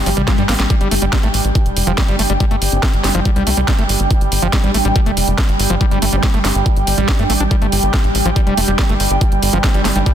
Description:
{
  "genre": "psychedelic trance",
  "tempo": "141 BPM",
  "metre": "4/4",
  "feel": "straight",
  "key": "unclear",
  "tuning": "A4 = 442 Hz",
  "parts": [
    { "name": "evolving wavetable pad", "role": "sustained chords", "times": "0.0-10.1 s", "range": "G3", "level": "-23 LUFS", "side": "right 4 dB", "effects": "chorus, built-in reverb, sidechain pumping" },
    { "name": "tight sequencer bass", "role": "bass", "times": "0.0-10.0 s", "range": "F1 to G2", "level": "-18 LUFS", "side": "equal", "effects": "tube saturation" },
    { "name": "swell", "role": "sound effects", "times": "0.0-0.7 s", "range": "none", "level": "-25 LUFS", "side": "left 5 dB", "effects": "none" },
    { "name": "airy breathy pad", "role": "texture", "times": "0.0-10.1 s", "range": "D4 to G5", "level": "-22 LUFS", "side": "equal", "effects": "chorus, phaser, sidechain pumping" },
    { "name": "screaming distorted acid line", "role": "riff", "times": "0.1-10.1 s", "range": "F3 to G4", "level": "-23 LUFS", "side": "moving between left 6 dB and right 4 dB", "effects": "distortion, chorus, auto-pan, vintage 12-bit sampler grit, sidechain pumping, ping-pong delay" },
    { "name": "drum and bass drum kit", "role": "drums", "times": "0.1-10.1 s", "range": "hi-hat, snare drum, toms", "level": "-20 LUFS", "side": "equal", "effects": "overdrive" },
    { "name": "electronic kick drum", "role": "drums", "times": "0.3-10.1 s", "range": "none", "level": "-15 LUFS", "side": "equal", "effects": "overdrive" },
    { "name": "vowel-sweep wobble bass", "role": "second line", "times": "2.7-3.2, 6.1-6.3, 9.5-10.0 s", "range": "C4 to D4", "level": "-31 LUFS", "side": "left 4 dB", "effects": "none" }
  ],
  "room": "light reverb",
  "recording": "dense, heavily limited modern master",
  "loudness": "-13 LUFS",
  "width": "side -10 dB against mid",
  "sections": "0.0-10.1 A section",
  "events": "drum fill 0.0-0.7; swell 0.0-0.7",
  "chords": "0.0 G5"
}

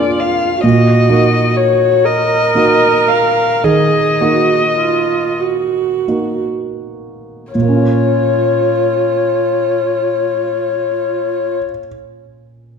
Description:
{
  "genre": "classical, slow romantic movement for piano quintet",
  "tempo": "25-45 BPM (dotted quarters)",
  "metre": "12/8",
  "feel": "rubato",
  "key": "Bb minor",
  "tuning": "A4 = 439 Hz",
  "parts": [
    { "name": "dark violin", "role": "melody", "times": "0.0-11.5 s", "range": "Db5 to F5", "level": "-15 LUFS", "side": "left 6 dB", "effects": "none" },
    { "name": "warm concert grand piano", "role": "accompaniment", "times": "0.0-12.8 s", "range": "Bb2 to Db5", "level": "-16 LUFS", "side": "right 2 dB", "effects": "none" },
    { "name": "warm viola", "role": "accompaniment", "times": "0.0-11.6 s", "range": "F4 to Bb4", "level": "-17 LUFS", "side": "right 6 dB", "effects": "none" }
  ],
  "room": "moderate scoring stage reverb, RT60 1.6 s",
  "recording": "dark, warm production",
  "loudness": "-12 LUFS",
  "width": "side -6 dB against mid",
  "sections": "0.0-7.5 A section; 7.5-12.8 B section",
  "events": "slowing down 0.0-7.5",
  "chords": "0.0 Bb7; 0.6 Ebm/Bb; 7.5 Bbm"
}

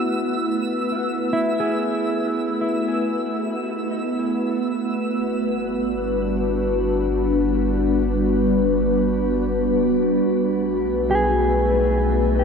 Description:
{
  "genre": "ambient",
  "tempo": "free time",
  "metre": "none",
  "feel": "none",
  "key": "unclear",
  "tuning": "A4 = 440 Hz",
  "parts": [
    { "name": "glassy FM pad", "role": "sustained chords", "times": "0.0-12.4 s", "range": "G3 to B4", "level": "-20 LUFS", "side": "left 1 dB", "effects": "ensemble chorus, built-in reverb, phaser, shimmer reverb" },
    { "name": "mellow electric guitar", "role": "arpeggios", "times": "0.0-3.8, 11.1-12.4 s", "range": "E4 to G#4", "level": "-25 LUFS", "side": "equal", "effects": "ping-pong delay, shimmer reverb" },
    { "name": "twinkling granular texture", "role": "texture", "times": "0.0-5.2 s", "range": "E6", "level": "-31 LUFS", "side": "right 2 dB", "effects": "built-in reverb, shimmer reverb" },
    { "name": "round analog bass", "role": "bass", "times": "5.2-12.4 s", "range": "G1 to B1", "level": "-26 LUFS", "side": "right 1 dB", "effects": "none" }
  ],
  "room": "wet huge ambient reverb, RT60 8.5 s",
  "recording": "none",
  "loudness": "-19 LUFS",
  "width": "side -6 dB against mid",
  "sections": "0.0-5.2 A section; 5.2-12.4 B section",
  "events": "none",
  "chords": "0.1 B7sus4; 5.2 Gmaj7; 10.3 B7"
}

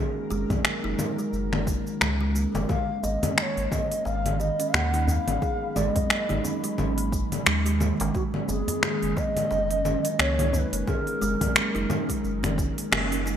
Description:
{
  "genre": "organic downtempo",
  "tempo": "88 BPM",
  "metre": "4/4",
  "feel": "swing 57% on 16ths",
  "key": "unclear",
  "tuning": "A4 = 440 Hz",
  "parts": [
    { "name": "ethereal airy pad", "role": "sustained chords", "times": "0.0-13.4 s", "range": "D#3 to B5", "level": "-33 LUFS", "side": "right 2 dB", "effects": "ensemble chorus, built-in reverb, phaser, sidechain pumping" },
    { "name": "kalimba", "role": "arpeggios", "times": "0.0-13.4 s", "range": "D#3 to G#4", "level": "-31 LUFS", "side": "right 2 dB", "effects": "digital delay" },
    { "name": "warm sub bass", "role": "bass", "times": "0.3-13.4 s", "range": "F#1 to D#2", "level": "-28 LUFS", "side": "equal", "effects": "none" },
    { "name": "organic electronic drum kit", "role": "drums", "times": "0.3-13.4 s", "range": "congas, finger snaps, hi-hat, shaker", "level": "-27 LUFS", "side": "left 1 dB", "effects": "gated reverb" },
    { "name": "djembe", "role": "percussion", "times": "0.3-12.5 s", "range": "none", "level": "-35 LUFS", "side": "left 2 dB", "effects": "none" },
    { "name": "electronic kick drum", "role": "drums", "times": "0.5-12.7 s", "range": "none", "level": "-29 LUFS", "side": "equal", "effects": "none" },
    { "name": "breathy reedy low ney", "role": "melody", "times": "2.7-11.9 s", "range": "F#4 to F#5", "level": "-29 LUFS", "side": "equal", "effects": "vintage 12-bit sampler grit, digital delay" }
  ],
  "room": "moderate plate reverb, RT60 2.6 s",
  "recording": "bright 1980s-style digital production",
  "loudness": "-23 LUFS",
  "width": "side -9 dB against mid",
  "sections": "0.0-13.4 A section",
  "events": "band accent 12.9-13.3",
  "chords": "0.0 F#add9; 2.7 G#madd9; 8.1 F#add9"
}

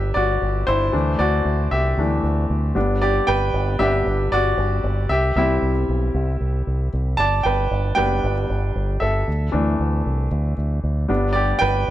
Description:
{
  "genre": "piano-driven pop",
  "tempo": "115 BPM",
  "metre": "4/4",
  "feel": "straight",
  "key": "G major",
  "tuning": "A4 = 439 Hz",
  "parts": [
    { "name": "bright grand piano", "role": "accompaniment", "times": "0.0-11.9 s", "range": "E3 to A5", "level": "-21 LUFS", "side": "equal", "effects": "none" },
    { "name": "fingered electric bass with an envelope filter", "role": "bass", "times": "0.0-11.9 s", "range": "F#1 to D2", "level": "-21 LUFS", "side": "equal", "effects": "none" }
  ],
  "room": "studio ambience",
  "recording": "dry, close 1970s-style studio recording",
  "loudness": "-18 LUFS",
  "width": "side -13 dB against mid",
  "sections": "0.0-11.9 A section",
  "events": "grand piano solo 0.0-11.9",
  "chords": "0.0 G; 0.9 Dsus2; 2.8 G; 5.1 C; 7.2 G; 9.3 Dsus2; 11.1 G"
}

